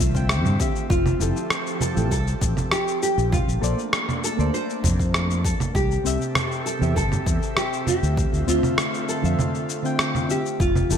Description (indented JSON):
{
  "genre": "sunset chillout",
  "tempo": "99 BPM",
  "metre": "4/4",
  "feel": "straight",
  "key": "unclear",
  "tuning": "A4 = 439 Hz",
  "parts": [
    { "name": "nylon-string guitar", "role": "melody", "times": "0.0-11.0 s", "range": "F4 to C5", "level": "-27 LUFS", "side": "right 1 dB", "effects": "lush chorus, digital delay" },
    { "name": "airy breathy pad", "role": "sustained chords", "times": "0.0-11.0 s", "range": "C3 to E5", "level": "-30 LUFS", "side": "equal", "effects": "chorus" },
    { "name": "mellow fretless electric bass", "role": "bass", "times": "0.0-11.0 s", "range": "F1 to G2", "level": "-23 LUFS", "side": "equal", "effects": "none" },
    { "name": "electronic shaker, rim click and congas", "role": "drums", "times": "0.0-11.0 s", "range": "none", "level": "-25 LUFS", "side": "right 1 dB", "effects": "gated reverb" },
    { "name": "soft electric-piano-like synth keys", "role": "accompaniment", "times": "0.1-11.0 s", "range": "C3 to G5", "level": "-30 LUFS", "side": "moving between left 4 dB and right 6 dB", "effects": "chorus, auto-pan, digital delay" },
    { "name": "electronic kick drum", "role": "drums", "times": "0.1-10.7 s", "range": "none", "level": "-25 LUFS", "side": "equal", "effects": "overdrive" }
  ],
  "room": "light reverb, digital ambience",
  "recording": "bright 1980s-style digital production",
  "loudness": "-20 LUFS",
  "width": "side -8 dB against mid",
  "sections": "0.0-11.0 A section",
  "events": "none",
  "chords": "0.0 Dm9; 0.9 Fmaj9; 3.3 Bbmaj9; 5.7 Am7/C; 7.9 Dm9"
}